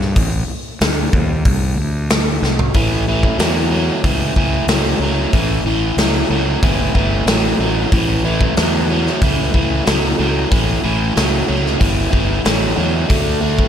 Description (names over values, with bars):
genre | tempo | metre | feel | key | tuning
blues rock power trio and southern rock | 93 BPM | 4/4 | straight | A mixolydian | A4 = 440 Hz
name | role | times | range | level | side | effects
fuzz fingered electric bass | bass | 0.0-13.6 s | G1 to G2 | -19 LUFS | equal | overdrive
big rock drum kit | drums | 0.0-13.7 s | hi-hat, kick drum, snare drum, toms | -17 LUFS | equal | none
biting overdriven guitar | riff | 2.7-13.7 s | A2 to A3 | -18 LUFS | right 1 dB | slapback echo
room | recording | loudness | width
moderate lush hall reverb, RT60 3.0 s | big arena sound | -14 LUFS | side -9 dB against mid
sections
0.0-2.7 A section; 2.7-13.7 B section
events
drum fill 2.4-2.7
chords
0.0 Am7b5; 1.8 N.C.; 2.7 A; 13.1 D5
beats
| 0.17 0.81 1.46 2.10 | 2.75 3.39 4.04 4.69 | 5.33 5.98 6.63 7.28 | 7.93 8.57 9.22 9.87 | 10.52 11.16 11.81 12.46 | 13.11